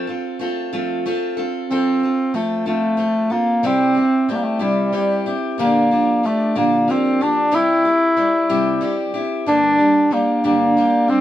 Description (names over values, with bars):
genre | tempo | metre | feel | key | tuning
acoustic folk duo or small band | 62 BPM (dotted quarters) | 6/8 | straight | F major | A4 = 444 Hz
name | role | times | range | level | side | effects
clear bass clarinet | melody | 0.0-11.2 s | G3 to E4 | -16 LUFS | equal | none
picked steel-string acoustic guitar | accompaniment | 0.0-11.2 s | G2 to A4 | -21 LUFS | equal | none
room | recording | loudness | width
little or no reverb | close, detailed microphones | -16 LUFS | side -12 dB against mid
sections
0.0-1.7 A section; 1.7-11.2 B section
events
none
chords
0.0 F; 3.6 C; 5.6 Bb6; 7.5 C; 9.5 Gm